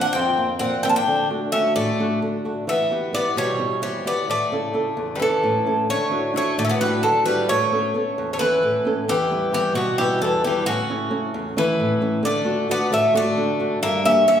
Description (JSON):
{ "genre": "greek folk, Greek bouzouki band", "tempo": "263 BPM (eighths)", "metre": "7/8", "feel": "straight", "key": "D major", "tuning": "A4 = 440 Hz", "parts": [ { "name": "Greek bouzouki", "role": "melody", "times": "0.0-14.4 s", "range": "F#4 to A5", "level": "-22 LUFS", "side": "equal", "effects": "none" }, { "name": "Greek bouzouki", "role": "second line", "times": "0.0-14.4 s", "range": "C#3 to F4", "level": "-26 LUFS", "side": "left 2 dB", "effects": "none" }, { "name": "flamenco guitar", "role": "accompaniment", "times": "0.0-14.4 s", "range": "E2 to A4", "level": "-23 LUFS", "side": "right 1 dB", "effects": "none" } ], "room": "wet recital hall reverb, RT60 1.4 s", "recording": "recorded in a church or concert hall", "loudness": "-19 LUFS", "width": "side -9 dB against mid", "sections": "0.0-5.9 A section; 5.9-14.4 B section", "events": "speeding up 0.0-14.4", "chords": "0.0 Bbsus2; 1.1 D; 2.7 Em; 4.3 A; 5.9 Dadd9; 7.5 Aadd9; 9.1 Em; 10.7 A; 12.2 D; 13.8 Gm", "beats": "0.13 0.36 0.60 0.83 | 1.06 1.29 1.52 1.75 1.99 2.22 2.45 | 2.68 2.91 3.14 3.37 3.60 3.83 4.06 | 4.29 4.52 4.75 4.98 5.21 5.43 5.66 | 5.89 6.12 6.35 6.58 6.81 7.04 7.26 | 7.49 7.72 7.95 8.17 8.40 8.63 8.85 | 9.08 9.31 9.53 9.76 9.99 10.21 10.44 | 10.66 10.89 11.12 11.34 11.57 11.79 12.02 | 12.24 12.47 12.69 12.92 13.14 13.37 13.59 | 13.81 14.04 14.26" }